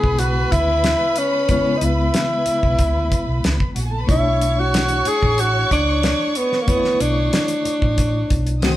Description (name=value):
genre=lush 1970s-style soul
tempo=92 BPM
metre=4/4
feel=straight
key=B dorian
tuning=A4 = 445 Hz
part: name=warm tenor saxophone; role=melody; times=0.0-8.8 s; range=A#3 to G#4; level=-20 LUFS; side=equal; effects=none
part: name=warm symphonic violin section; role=second line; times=0.0-8.8 s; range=F#4 to Eb6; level=-26 LUFS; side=right 1 dB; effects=none
part: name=mellow reed electric piano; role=accompaniment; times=0.0-8.8 s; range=C#3 to C#5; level=-27 LUFS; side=left 2 dB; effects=fast tremolo
part: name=hollow-body short-scale fingered electric bass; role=bass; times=0.0-8.8 s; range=A1 to D2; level=-21 LUFS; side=equal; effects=none
part: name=damped 70s drum kit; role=drums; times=0.0-8.8 s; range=hi-hat, kick drum, snare drum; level=-21 LUFS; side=equal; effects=none
room=moderate large studio reverb, RT60 0.9 s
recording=band playing live in one room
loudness=-16 LUFS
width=side -14 dB against mid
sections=0.0-8.8 A section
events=none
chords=0.0 C#m7; 4.1 Bm11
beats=0.20 0.85 | 1.49 2.14 2.79 3.44 | 4.09 4.74 5.38 6.03 | 6.68 7.33 7.98 8.63